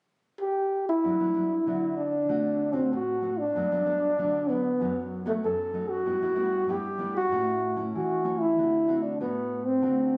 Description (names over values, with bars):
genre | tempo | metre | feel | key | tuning
samba | 96 BPM | 4/4 | straight | G major | A4 = 440 Hz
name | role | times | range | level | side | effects
mellow trombone | melody | 0.4-10.2 s | A3 to A4 | -28 LUFS | equal | none
nylon-string guitar | accompaniment | 1.0-10.2 s | F#2 to F#4 | -35 LUFS | equal | none
room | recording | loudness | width
moderate studio ambience, RT60 0.5 s | recorded on a phone in the room, club reverb, compression | -27 LUFS | mono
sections
0.0-1.0 A section; 1.0-10.2 B section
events
none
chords
0.0 N.C.; 1.0 Gmaj7; 2.3 D7; 3.5 Gmaj7; 4.8 B/F#; 6.1 Em/G; 7.3 A; 8.6 D7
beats
0.40 | 1.03 1.66 2.29 2.92 | 3.55 4.18 4.81 5.44 | 6.06 6.69 7.32 7.95 | 8.57 9.20 9.83